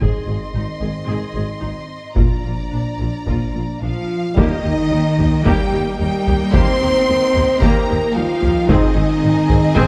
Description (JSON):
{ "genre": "cinematic, epic orchestral film score", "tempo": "111 BPM", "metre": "4/4", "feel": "straight", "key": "Eb major", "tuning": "A4 = 440 Hz", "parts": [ { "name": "warm symphonic violin section", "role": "melody", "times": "0.0-9.9 s", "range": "Eb5 to C6", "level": "-33 LUFS", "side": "equal", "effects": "none" }, { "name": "rich symphonic violin section", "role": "second line", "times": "0.0-9.9 s", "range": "D5 to C6", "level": "-32 LUFS", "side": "equal", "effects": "none" }, { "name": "clear symphonic viola section", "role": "accompaniment", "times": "0.0-9.9 s", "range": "G3 to Ab4", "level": "-28 LUFS", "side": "equal", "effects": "none" }, { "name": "mellow French horn section", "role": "sustained chords", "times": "0.0-9.9 s", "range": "Eb3 to C5", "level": "-24 LUFS", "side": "equal", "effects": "none" }, { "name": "clear symphonic cello section", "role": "bass", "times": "0.0-9.9 s", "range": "Ab2 to C4", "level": "-25 LUFS", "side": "equal", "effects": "none" }, { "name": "clear symphonic double bass section", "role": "bass", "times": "0.0-9.9 s", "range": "Ab1 to Eb2", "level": "-24 LUFS", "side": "equal", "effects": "none" }, { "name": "taiko ensemble", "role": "drums", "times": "0.0-9.9 s", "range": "none", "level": "-22 LUFS", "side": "equal", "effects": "none" }, { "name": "clear trombone section", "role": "sustained chords", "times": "4.3-9.9 s", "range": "Eb3 to C4", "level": "-31 LUFS", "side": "equal", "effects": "none" }, { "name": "rich symphonic string section", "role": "sustained chords", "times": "4.4-9.9 s", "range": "Bb3 to Ab5", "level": "-30 LUFS", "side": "equal", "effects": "none" } ], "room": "moderate scoring stage reverb, RT60 1.8 s", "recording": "dark, warm production", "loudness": "-17 LUFS", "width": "mono", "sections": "0.0-4.4 A section; 4.4-9.9 B section", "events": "none", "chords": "0.0 Ab; 2.2 Bb; 4.4 Eb; 8.7 Ab" }